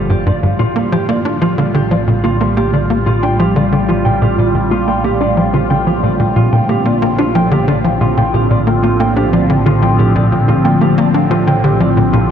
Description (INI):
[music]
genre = ambient, sequencer-driven space music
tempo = 91 BPM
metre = 4/4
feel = straight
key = unclear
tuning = A4 = 441 Hz
[part]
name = phased analog pad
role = sustained chords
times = 0.0-12.3 s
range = A2 to F4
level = -15 LUFS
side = equal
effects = phaser, chorus
[part]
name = mellow electric guitar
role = arpeggios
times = 0.0-12.3 s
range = G3 to G5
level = -19 LUFS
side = moving between left 3 dB and right 3 dB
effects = auto-pan, ping-pong delay
[part]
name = analog drone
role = bass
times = 0.0-12.3 s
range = G1 to Bb1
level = -23 LUFS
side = equal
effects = chorus
[part]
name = tight sequencer bass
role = riff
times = 0.1-12.2 s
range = G2 to D4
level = -15 LUFS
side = equal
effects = analog chorus, ping-pong delay
[sound]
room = wet cathedral reverb, RT60 6.5 s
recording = in a vast, echoing space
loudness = -11 LUFS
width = side -8 dB against mid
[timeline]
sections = 0.0-12.3 A section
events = none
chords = 0.0 G7(no3); 0.6 Bbadd9